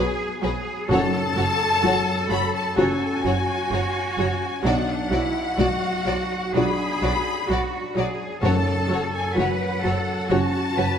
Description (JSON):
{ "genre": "cinematic, emotional film score for orchestra", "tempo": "64 BPM", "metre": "4/4", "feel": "rubato", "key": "F# minor", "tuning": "A4 = 440 Hz", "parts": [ { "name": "dark symphonic violin section", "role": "melody", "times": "0.0-11.0 s", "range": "F#5 to B5", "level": "-27 LUFS", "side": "left 4 dB", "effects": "none" }, { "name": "rich symphonic violin section", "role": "second line", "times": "0.0-10.9 s", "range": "F#4 to D5", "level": "-30 LUFS", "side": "left 2 dB", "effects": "none" }, { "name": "felt-muted upright piano", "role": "accompaniment", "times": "0.0-11.0 s", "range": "B1 to G#4", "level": "-26 LUFS", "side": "left 2 dB", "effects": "none" }, { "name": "rich symphonic viola section", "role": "accompaniment", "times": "0.0-10.8 s", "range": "F#3 to F#4", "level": "-29 LUFS", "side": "right 2 dB", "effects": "none" }, { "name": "rich symphonic cello section", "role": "bass", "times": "0.0-11.0 s", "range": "D4 to B4", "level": "-28 LUFS", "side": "right 2 dB", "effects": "none" }, { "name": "warm studio double bass section", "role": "bass", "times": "0.0-10.9 s", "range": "F#1 to B1", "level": "-29 LUFS", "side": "right 3 dB", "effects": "none" }, { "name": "timpani", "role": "percussion", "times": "0.9-2.3, 8.4-9.8 s", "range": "F#2", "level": "-30 LUFS", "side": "right 1 dB", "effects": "none" } ], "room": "moderate scoring stage reverb, RT60 1.9 s", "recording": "none", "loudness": "-20 LUFS", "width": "side -8 dB against mid", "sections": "0.0-11.0 A section", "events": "none", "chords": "0.0 B5; 0.9 F#m; 4.7 Bm; 8.4 F#m", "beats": "| 0.90 1.84 2.78 3.72 | 4.65 5.58 6.55 7.49 | 8.43 9.36 10.29" }